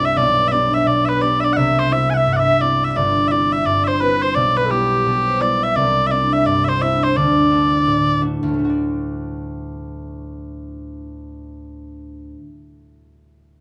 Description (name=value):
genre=celtic folk, Celtic hornpipe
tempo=171 BPM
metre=4/4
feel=swing 63% on 8ths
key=D mixolydian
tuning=A4 = 440 Hz
part: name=mellow small bagpipes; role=melody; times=0.0-8.2 s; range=G4 to G#5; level=-20 LUFS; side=equal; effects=none
part: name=mellow wooden flute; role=second line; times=0.0-8.2 s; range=G4 to E5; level=-27 LUFS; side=equal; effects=none
part: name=vibraphone with soft mallets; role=second line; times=0.0-8.2 s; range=G4 to E5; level=-28 LUFS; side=equal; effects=slapback echo
part: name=concert harp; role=accompaniment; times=0.0-12.4 s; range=G1 to D5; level=-23 LUFS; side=equal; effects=none
room=moderate small room reverb, RT60 0.5 s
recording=none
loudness=-17 LUFS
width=mono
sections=0.0-8.6 A section; 8.6-11.4 B section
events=none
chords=0.2 G/B; 1.6 C; 4.4 G6/B; 5.8 Cadd9; 7.2 D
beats=| 0.16 0.51 0.86 1.21 | 1.56 1.91 2.26 2.61 | 2.96 3.31 3.66 4.01 | 4.36 4.71 5.06 5.41 | 5.76 6.11 6.46 6.81 | 7.16 7.51 7.87 8.22 | 8.57 8.92 9.27 9.62 | 9.97 10.32 10.67 11.02